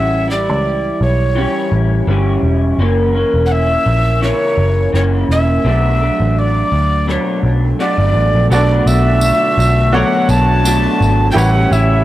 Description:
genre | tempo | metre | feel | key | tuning
indie pop, bedroom pop | 84 BPM | 4/4 | swing 55% on 16ths | unclear | A4 = 438 Hz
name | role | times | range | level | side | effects
breathy mellow soprano recorder | melody | 0.0-12.0 s | C#5 to A5 | -17 LUFS | equal | lush chorus, tape echo
electric guitar through a small old amp | accompaniment | 0.0-12.0 s | F#2 to E4 | -18 LUFS | equal | analog chorus, warbly pitch drift
vintage muted picked electric bass | bass | 0.0-12.0 s | E1 to D2 | -14 LUFS | equal | none
bright upright piano | accompaniment | 8.5-12.0 s | D4 to D5 | -20 LUFS | right 2 dB | cassette tape
hollow soft pad | sustained chords | 8.5-12.0 s | C#3 to F#4 | -22 LUFS | equal | chorus
tambourine | percussion | 8.5-11.9 s | none | -27 LUFS | right 4 dB | none
room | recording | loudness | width
light reverb, small room ambience | dry, gritty hardware recording | -11 LUFS | side -14 dB against mid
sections
0.0-8.5 A section; 8.5-12.0 B section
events
none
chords
0.0 A7; 2.8 F#7; 5.7 Bm7; 11.4 A7

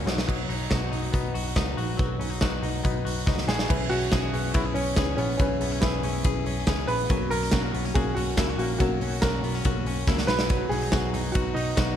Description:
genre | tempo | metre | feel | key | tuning
jangly indie pop | 141 BPM | 4/4 | straight | B major | A4 = 440 Hz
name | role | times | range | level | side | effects
fingerpicked steel-string acoustic guitar | accompaniment | 0.0-12.0 s | B2 to G#4 | -36 LUFS | right 9 dB | none
reed electric piano | accompaniment | 0.0-12.0 s | A#3 to F#5 | -35 LUFS | left 9 dB | none
direct-recorded clean electric guitar | arpeggios | 0.0-12.0 s | E3 to G#4 | -34 LUFS | left 8 dB | digital delay
vintage muted picked electric bass | bass | 0.0-11.9 s | A#1 to C#2 | -30 LUFS | equal | none
big rock drum kit | drums | 0.1-11.9 s | crash cymbal, hi-hat, kick drum, ride cymbal, snare drum | -26 LUFS | equal | none
warm upright piano | melody | 3.5-12.0 s | C#4 to B4 | -30 LUFS | right 2 dB | none
room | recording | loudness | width
small room ambience | dark, warm production | -23 LUFS | side -10 dB against mid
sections
0.3-3.7 A section; 3.7-12.0 B section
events
drum fill 0.0, 3.3-3.7, 10.1-10.5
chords
0.1 B; 3.7 E6; 7.1 F#; 10.3 B

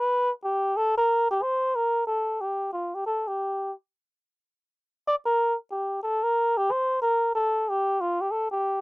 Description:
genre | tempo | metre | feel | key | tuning
jazz | 182 BPM | 4/4 | swing 61% on 8ths | unclear | A4 = 439 Hz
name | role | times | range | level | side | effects
trumpet with cup mute | solo | 0.0-8.8 s | F4 to D5 | -23 LUFS | equal | none
room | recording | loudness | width
light reverb | dry, close 1970s-style studio recording | -23 LUFS | side -26 dB against mid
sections
0.0-8.8 A section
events
none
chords
none

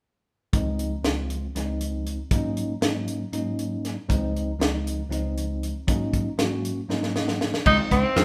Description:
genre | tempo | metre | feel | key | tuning
electric jazz fusion | 236 BPM (eighths) | 7/8 | straight | unclear | A4 = 440 Hz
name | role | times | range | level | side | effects
bell-like tine electric piano | accompaniment | 0.5-8.2 s | Db2 to Gb5 | -29 LUFS | equal | none
tight funk drum kit | drums | 0.5-8.2 s | crash cymbal, hi-hat, kick drum, snare drum | -28 LUFS | equal | none
clear tenor saxophone | melody | 7.7-8.2 s | C4 to Eb4 | -23 LUFS | equal | none
clean electric guitar | stabs | 7.7-8.2 s | Eb3 to F4 | -34 LUFS | equal | none
dry thumbed slap bass | bass | 7.7-8.2 s | Db2 to F2 | -25 LUFS | equal | none
room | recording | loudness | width
moderate large studio reverb, RT60 1.1 s | band playing live in one room | -26 LUFS | mono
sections
0.5-7.7 A section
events
drum fill 6.9-7.7; tine electric piano fill 6.9-7.7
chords
0.5 Dbmaj9; 2.3 Ab7sus4; 4.1 Dbmaj9; 5.9 Ab7sus4; 7.7 Dbmaj9

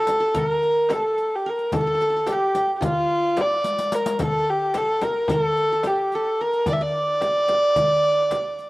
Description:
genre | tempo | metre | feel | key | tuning
Turkish makam ensemble | 219 BPM (eighths) | 9/8 | straight | G makam nikriz | A4 = 439 Hz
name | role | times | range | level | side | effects
dark kamancheh | melody | 0.0-8.7 s | F4 to E5 | -20 LUFS | equal | plate reverb
qanun | second line | 0.0-8.7 s | F4 to D5 | -31 LUFS | right 2 dB | cassette tape, plate reverb
darbuka | percussion | 0.1-8.7 s | none | -31 LUFS | left 1 dB | none
frame drum | percussion | 0.1-8.4 s | none | -30 LUFS | left 2 dB | none
riq | percussion | 0.1-8.7 s | none | -35 LUFS | left 3 dB | none
room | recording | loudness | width
wet studio reverb, RT60 0.5 s | home recording on cassette | -19 LUFS | side -19 dB against mid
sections
0.0-8.7 A section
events
drum fill 3.6-4.2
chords
none

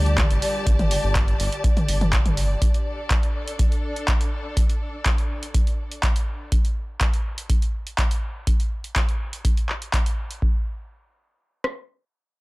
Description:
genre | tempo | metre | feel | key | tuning
acid house | 123 BPM | 4/4 | straight | D minor | A4 = 440 Hz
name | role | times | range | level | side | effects
warm analog pad | sustained chords | 0.0-2.6 s | D3 to Bb4 | -36 LUFS | left 1 dB | none
round analog bass | bass | 0.0-2.6 s | G1 to D2 | -22 LUFS | equal | sidechain pumping
rich studio string section | texture | 0.0-6.5 s | D4 to A5 | -30 LUFS | left 1 dB | sidechain pumping
punchy analog drum machine | drums | 0.1-10.4 s | handclaps, hi-hat, toms | -27 LUFS | equal | none
booming analog drum machine | drums | 0.2-11.8 s | kick drum, rim click | -22 LUFS | equal | overdrive
room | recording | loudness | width
light reverb, studio ambience | echo-heavy mix | -20 LUFS | side -22 dB against mid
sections
0.0-10.4 A section; 10.4-12.4 B section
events
fade-out on string section 0.0-6.5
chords
0.0 Gm7; 2.6 D5; 6.5 N.C.

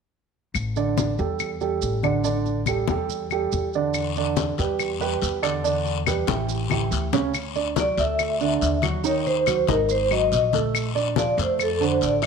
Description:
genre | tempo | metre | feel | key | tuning
Afro-Cuban jazz | 141 BPM | 4/4 | straight | unclear | A4 = 439 Hz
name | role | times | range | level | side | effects
upright bass | bass | 0.5-12.3 s | G#1 to F2 | -28 LUFS | left 2 dB | none
claves | percussion | 0.5-12.3 s | none | -30 LUFS | left 15 dB | none
congas | percussion | 0.5-12.2 s | none | -28 LUFS | left 12 dB | none
maracas | percussion | 0.6-12.2 s | none | -37 LUFS | right 11 dB | none
warm upright piano | accompaniment | 0.8-12.3 s | C#3 to Eb5 | -25 LUFS | right 7 dB | none
guiro | percussion | 3.9-12.3 s | none | -33 LUFS | left 14 dB | none
vibraphone with medium mallets | melody | 7.8-12.3 s | A4 to E5 | -22 LUFS | left 1 dB | none
room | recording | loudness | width
moderate echo chamber reverb, RT60 1.4 s, small room ambience | 1960s-style stereo with parts hard left and right | -21 LUFS | side -6 dB against mid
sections
0.6-7.3 A section; 7.3-12.3 B section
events
drum fill 6.7-7.3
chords
0.6 A7sus4; 4.0 Em7; 6.5 A7; 7.3 Dadd9; 9.0 Ebm; 9.9 G#sus2; 10.7 Bbmaj7

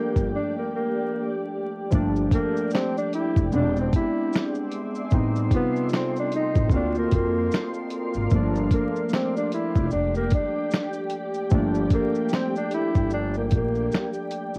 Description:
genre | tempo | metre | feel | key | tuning
lo-fi hip hop | 75 BPM | 4/4 | swing 58% on 16ths | G dorian | A4 = 439 Hz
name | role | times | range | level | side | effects
breathy tenor saxophone | melody | 0.0-14.1 s | Bb3 to E4 | -29 LUFS | equal | low-pass filter, cassette tape
warbly lo-fi synth keys | accompaniment | 0.0-14.6 s | C3 to A4 | -30 LUFS | equal | chorus, low-pass filter, cassette tape
granular cloud pad | sustained chords | 0.0-14.6 s | G4 to C6 | -35 LUFS | equal | built-in reverb, low-pass filter, cassette tape
upright bass | bass | 0.2-14.6 s | E1 to E#2 | -30 LUFS | equal | none
dusty soul sampler-style drum kit | drums | 0.2-14.6 s | finger snaps, hi-hat, kick drum, shaker, snare drum | -26 LUFS | equal | cassette tape
room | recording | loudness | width
light reverb | home recording on cassette, vinyl crackle | -24 LUFS | mono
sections
0.0-1.9 A section; 1.9-14.6 B section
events
break 0.3-1.9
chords
0.0 Gm7; 3.5 E7b13; 5.1 Am7b5; 6.7 D7alt; 8.3 Gm7

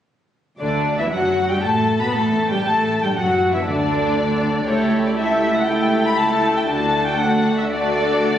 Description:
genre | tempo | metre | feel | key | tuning
quick classical-period movement for string orchestra | 118 BPM | 4/4 | rubato | D major | A4 = 440 Hz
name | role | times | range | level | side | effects
dark studio violin section | melody | 0.6-8.4 s | C#5 to B5 | -21 LUFS | left 2 dB | none
warm studio violin section | second line | 0.6-8.4 s | D4 to B4 | -24 LUFS | left 2 dB | none
dark studio viola section | accompaniment | 0.6-8.4 s | D3 to E4 | -21 LUFS | equal | none
dark studio double bass section | bass | 0.6-8.4 s | F#1 to D2 | -30 LUFS | right 1 dB | none
warm studio cello section | bass | 0.6-8.4 s | C#2 to B2 | -26 LUFS | right 2 dB | none
room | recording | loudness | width
wet concert hall reverb, RT60 1.7 s | recorded on a phone in the room, studio reverb | -16 LUFS | side -10 dB against mid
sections
0.6-8.4 A section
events
none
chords
0.6 D; 2.7 N.C.; 4.7 A7/C#; 6.7 D

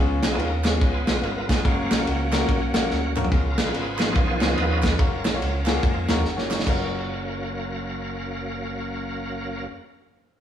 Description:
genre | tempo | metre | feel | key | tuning
uptempo gospel | 144 BPM | 4/4 | swing 63% on 8ths | F# major | A4 = 440 Hz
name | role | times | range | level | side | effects
warm baby grand piano | accompaniment | 0.0-9.7 s | F#2 to A#5 | -29 LUFS | left 3 dB | none
fingered electric bass with an envelope filter | bass | 0.0-9.7 s | F#1 to E#2 | -28 LUFS | equal | none
bright tonewheel organ | sustained chords | 0.2-9.7 s | D#3 to E#5 | -28 LUFS | right 1 dB | slow rotary speaker, chorus vibrato
warm soul drum kit | drums | 0.2-6.8 s | crash cymbal, kick drum, ride cymbal, snare drum, toms | -23 LUFS | equal | none
group handclap | percussion | 0.2-6.9 s | none | -38 LUFS | right 3 dB | none
room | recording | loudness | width
moderate stone room reverb, RT60 1.2 s | band playing live in one room, studio reverb | -21 LUFS | side -10 dB against mid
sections
0.0-3.3 A section; 3.3-6.7 B section; 6.7-10.0 C section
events
tonewheel organ solo 0.0-3.3, 3.3-6.7; drum fill 2.9-3.3, 6.2-6.7; grand piano fill 5.8-6.7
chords
0.0 C#7; 1.6 F#maj7; 3.3 C#7; 5.0 F#maj7

